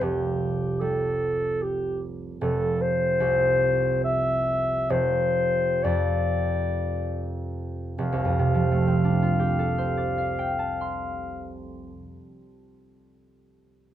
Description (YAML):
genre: classical, impressionist duo for clarinet and harp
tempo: 51-77 BPM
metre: 3/4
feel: rubato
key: F major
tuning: A4 = 438 Hz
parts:
  - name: mellow clarinet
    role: melody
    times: 0.0-11.5 s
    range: G4 to F5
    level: -25 LUFS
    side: left 2 dB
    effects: none
  - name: concert harp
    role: accompaniment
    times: 0.0-12.7 s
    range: F1 to C6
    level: -26 LUFS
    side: right 2 dB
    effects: none
room: light reverb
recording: none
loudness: -22 LUFS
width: side -11 dB against mid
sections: 0.0-8.0 A section; 8.0-11.2 B section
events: slowing down 1.2-8.0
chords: 0.0 Fsus2; 4.9 G7sus4/F (rootless); 8.0 F69